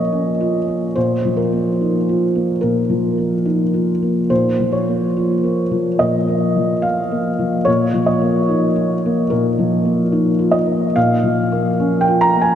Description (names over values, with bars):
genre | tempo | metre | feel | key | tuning
neoclassical minimalist piano | 72 BPM | 4/4 | rubato | Bb minor | A4 = 440 Hz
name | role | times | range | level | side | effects
felt-muted upright piano | solo | 0.0-12.6 s | Bb2 to Bb5 | -15 LUFS | equal | none
room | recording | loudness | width
wet cathedral reverb, RT60 6.5 s | in a vast, echoing space | -15 LUFS | side -9 dB against mid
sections
0.0-12.6 A section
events
none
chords
0.0 Bbm; 1.0 Ebsus2/Bb; 4.3 Bbm; 7.7 Ebsus2/Bb; 11.0 Bbm